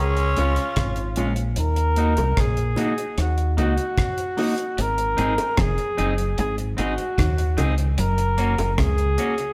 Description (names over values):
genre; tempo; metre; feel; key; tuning
roots reggae; 75 BPM; 4/4; straight; unclear; A4 = 439 Hz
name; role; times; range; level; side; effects
warm flugelhorn; melody; 0.0-9.5 s; F4 to Bb4; -28 LUFS; equal; none
growling tenor saxophone; second line; 0.0-1.1 s; Db4; -28 LUFS; equal; none
deep dub fingered electric bass; bass; 0.0-9.2 s; F1 to Eb2; -25 LUFS; equal; none
deep reggae drum kit; drums; 0.2-9.5 s; hi-hat, kick drum, rim click; -29 LUFS; equal; none
clean electric guitar; accompaniment; 0.4-9.3 s; Ab3 to Ab4; -30 LUFS; equal; none
bongos; percussion; 0.4-9.0 s; none; -36 LUFS; equal; none
clean electric guitar; riff; 4.8-9.0 s; F2 to Eb3; -34 LUFS; equal; spring reverb, dub echo
room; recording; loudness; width
moderate stone room reverb, RT60 1.3 s; band playing live in one room; -22 LUFS; mono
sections
0.0-4.8 A section; 4.8-9.5 B section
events
none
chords
0.0 Db; 1.6 Ebm; 4.8 Ab; 8.0 Gb